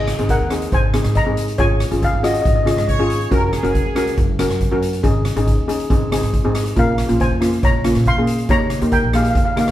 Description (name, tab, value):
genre	calypso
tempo	139 BPM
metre	4/4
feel	straight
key	unclear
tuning	A4 = 439 Hz
part	steel pan	melody	0.0-2.8, 6.8-9.7 s	Gb4 to C6	-21 LUFS	left 1 dB	none
part	steel pan	accompaniment	0.0-9.7 s	Bb3 to Bb4	-20 LUFS	left 1 dB	none
part	upright bass	bass	0.0-9.7 s	Gb1 to Bb2	-21 LUFS	equal	none
part	street-band drum kit	drums	0.1-9.7 s	hi-hat, kick drum, rim click	-20 LUFS	equal	none
part	bright horn section	second line	2.9-4.4 s	Ab4 to Db5	-25 LUFS	right 1 dB	none
room	moderate plate reverb, RT60 1.1 s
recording	heard from further back in the room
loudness	-15 LUFS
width	side -13 dB against mid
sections	0.0-9.7 A section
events	none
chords	0.0 Abadd9; 1.6 Db/Ab; 3.3 Gbadd9; 5.0 Absus4; 5.9 Ab; 6.8 Bbmadd9; 8.5 Eb7